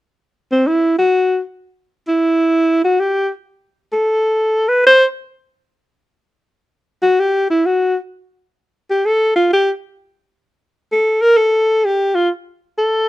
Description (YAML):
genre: jazz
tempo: 129 BPM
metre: 4/4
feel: swing 66% on 8ths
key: unclear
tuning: A4 = 439 Hz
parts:
  - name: warm alto saxophone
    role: solo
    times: 0.5-13.1 s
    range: C4 to C5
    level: -12 LUFS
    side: equal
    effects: none
room: light reverb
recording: close, detailed microphones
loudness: -13 LUFS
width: side -16 dB against mid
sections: 0.0-6.7 A section; 6.7-13.1 B section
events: none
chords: none